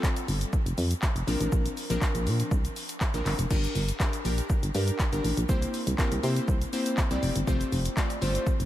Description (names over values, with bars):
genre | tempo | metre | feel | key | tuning
dance-pop | 121 BPM | 4/4 | straight | G dorian | A4 = 440 Hz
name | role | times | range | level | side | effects
glassy digital keys | accompaniment | 0.0-8.5 s | F3 to D5 | -32 LUFS | left 1 dB | chorus
deep house drum kit | drums | 0.0-8.7 s | crash cymbal, handclaps, hi-hat, kick drum, shaker, snare drum | -28 LUFS | equal | none
solid FM bass | bass | 0.3-8.7 s | F1 to C3 | -28 LUFS | equal | sidechain pumping
room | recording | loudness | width
light reverb, digital ambience | none | -25 LUFS | side -13 dB against mid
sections
0.0-3.5 A section; 3.5-8.7 B section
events
none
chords
0.0 Fadd9; 1.3 Bbadd9; 3.5 Gm; 5.5 C7; 7.5 Fadd9